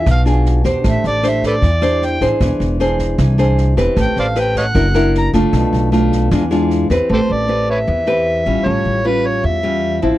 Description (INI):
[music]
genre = bossa nova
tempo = 154 BPM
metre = 4/4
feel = straight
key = A minor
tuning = A4 = 440 Hz
[part]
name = overdriven harmonica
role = melody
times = 0.0-10.0 s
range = G4 to A#5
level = -18 LUFS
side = equal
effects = none
[part]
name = nylon-string guitar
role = accompaniment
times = 0.0-10.2 s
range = A2 to C5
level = -16 LUFS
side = equal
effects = none
[part]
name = upright bass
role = bass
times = 0.0-10.1 s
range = E1 to E2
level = -17 LUFS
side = equal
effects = none
[part]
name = swinging big-band drum kit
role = drums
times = 0.1-7.0 s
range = kick drum, rim click, snare drum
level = -24 LUFS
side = equal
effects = none
[sound]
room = little or no reverb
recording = dry, close 1970s-style studio recording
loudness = -13 LUFS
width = side -15 dB against mid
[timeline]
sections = 0.0-7.1 A section; 7.1-10.2 B section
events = harmonica solo 0.0-7.1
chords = 0.0 E7b9 (rootless); 0.8 Am7; 2.4 E7alt; 4.0 Am9; 4.8 F#7alt; 5.5 Bm7b5; 6.3 E7b9; 7.1 Am9; 8.7 A7b13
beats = 0.07 0.46 | 0.85 1.24 1.63 2.02 | 2.41 2.80 3.19 3.58 | 3.97 4.36 4.75 5.14 | 5.53 5.92 6.31 6.70 | 7.09 7.48 7.88 8.27 | 8.66 9.05 9.44 9.83